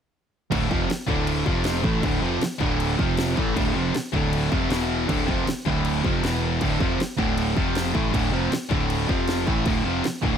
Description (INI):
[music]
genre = punk rock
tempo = 157 BPM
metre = 4/4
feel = straight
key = D minor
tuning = A4 = 440 Hz
[part]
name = overdriven electric guitar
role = riff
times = 0.5-10.4 s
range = D2 to A3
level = -29 LUFS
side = left 1 dB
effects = none
[part]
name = sludgy distorted guitar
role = riff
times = 0.5-10.4 s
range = D2 to A3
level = -26 LUFS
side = right 10 dB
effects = overdrive
[part]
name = tight distorted guitar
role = riff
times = 0.5-10.4 s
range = D2 to A3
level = -28 LUFS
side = left 14 dB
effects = distortion
[part]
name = growling picked electric bass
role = bass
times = 0.5-10.4 s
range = D1 to A1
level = -28 LUFS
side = left 1 dB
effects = overdrive
[part]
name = techno drum kit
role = drums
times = 0.5-10.3 s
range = crash cymbal, kick drum, snare drum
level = -27 LUFS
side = left 1 dB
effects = none
[sound]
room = little or no reverb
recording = none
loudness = -21 LUFS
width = side -8 dB against mid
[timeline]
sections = 0.5-10.4 A section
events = none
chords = 0.5 Dm; 1.5 F5; 1.8 Dm; 3.0 F5; 3.4 Dm; 4.7 E5; 5.1 Dm; 6.2 E5; 6.6 Dm; 7.6 F5; 7.9 Dm; 9.1 F5; 9.5 Dm